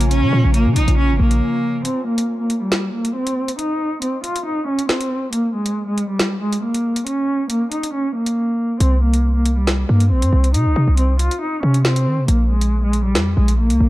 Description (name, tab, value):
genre	hip hop, drill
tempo	138 BPM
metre	4/4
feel	half-time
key	unclear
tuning	A4 = 440 Hz
part	clear cello	melody	0.0-13.9 s	G3 to F4	-20 LUFS	equal	low-pass filter
part	mellow tine electric piano	accompaniment	0.0-1.9 s	Db3 to F4	-24 LUFS	equal	medium stereo tremolo
part	ethereal airy pad	sustained chords	0.0-1.8 s	F4 to Bb5	-30 LUFS	right 2 dB	ensemble chorus, built-in reverb
part	hard-hitting 808-style bass	bass	0.0-1.4, 8.8-13.9 s	Ab1 to Eb3	-15 LUFS	equal	none
part	drill drum kit	drums	0.0-13.8 s	hi-hat, snare drum	-23 LUFS	equal	none
room	little or no reverb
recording	dark, warm production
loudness	-16 LUFS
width	side -17 dB against mid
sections	0.0-1.8 A section; 1.8-13.9 B section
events	break 1.4-1.8, 1.8-8.8; filter sweep on cello 1.8-13.9; silent gap 8.4-8.8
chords	0.0 Bbm7; 1.8 N.C.; 12.3 Bb7(no3)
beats	| 0.11 0.54 0.98 1.41 | 1.85 2.28 2.72 3.15 | 3.59 4.02 4.46 4.89 | 5.33 5.76 6.20 6.63 | 7.07 7.50 7.93 8.37 | 8.80 9.24 9.67 10.11 | 10.54 10.98 11.41 11.85 | 12.28 12.72 13.15 13.59